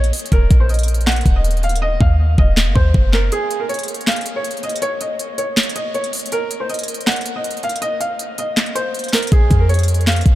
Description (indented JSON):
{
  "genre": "hip hop, trap",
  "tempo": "160 BPM",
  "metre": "4/4",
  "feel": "half-time",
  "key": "unclear",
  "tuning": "A4 = 438 Hz",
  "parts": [
    { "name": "felt-muted upright piano", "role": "melody", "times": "0.0-10.3 s", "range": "Ab4 to Gb5", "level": "-22 LUFS", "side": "equal", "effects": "low-pass filter, tape echo" },
    { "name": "clean 808-style bass", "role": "bass", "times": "0.0-3.3, 9.3-10.4 s", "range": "Eb1 to F2", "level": "-15 LUFS", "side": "equal", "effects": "none" },
    { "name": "trap drum kit", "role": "drums", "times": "0.0-10.3 s", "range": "handclaps, hi-hat, kick drum, snare drum", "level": "-18 LUFS", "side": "equal", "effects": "overdrive" }
  ],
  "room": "light reverb, digital ambience",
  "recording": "none",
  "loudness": "-15 LUFS",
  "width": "side -15 dB against mid",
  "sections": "0.0-10.4 A section",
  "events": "hi-hats muted 1.8-3.3; break 3.3-9.3",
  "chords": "0.3 Ebm; 3.3 N.C.; 9.3 Bbm",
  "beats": "| 0.32 0.69 1.07 1.44 | 1.82 2.19 2.57 2.94 | 3.32 3.69 4.07 4.44 | 4.82 5.19 5.57 5.94 | 6.32 6.69 7.07 7.44 | 7.82 8.19 8.57 8.94 | 9.32 9.69 10.07"
}